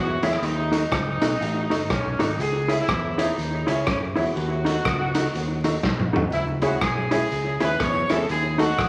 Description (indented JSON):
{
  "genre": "ska",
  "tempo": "122 BPM",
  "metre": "4/4",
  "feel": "swing 60% on 8ths",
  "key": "C# minor",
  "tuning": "A4 = 440 Hz",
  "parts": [
    { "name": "warm horn section", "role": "melody", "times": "0.0-8.9 s", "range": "C#4 to C#5", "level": "-30 LUFS", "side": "equal", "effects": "none" },
    { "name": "fingered electric bass", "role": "bass", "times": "0.0-8.9 s", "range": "F#1 to F#2", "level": "-30 LUFS", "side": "equal", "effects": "none" },
    { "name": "mellow electric guitar", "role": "accompaniment", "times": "0.2-8.7 s", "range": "D#4 to E5", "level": "-28 LUFS", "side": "equal", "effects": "analog delay" },
    { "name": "raw garage drum kit", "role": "drums", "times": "0.2-8.9 s", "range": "hi-hat, kick drum, rim click, snare drum, toms", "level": "-30 LUFS", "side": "equal", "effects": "none" },
    { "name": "honky-tonk upright piano", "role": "stabs", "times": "6.6-8.8 s", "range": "G#3 to A4", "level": "-32 LUFS", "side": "equal", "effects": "none" }
  ],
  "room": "moderate large studio reverb, RT60 0.8 s",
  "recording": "vinyl crackle",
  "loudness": "-23 LUFS",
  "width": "mono",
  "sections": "0.0-8.9 A section",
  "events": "drum fill 5.8-6.3",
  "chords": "0.4 D#dim; 2.4 C#m; 4.4 D#dim; 6.3 C#m; 8.3 D#dim"
}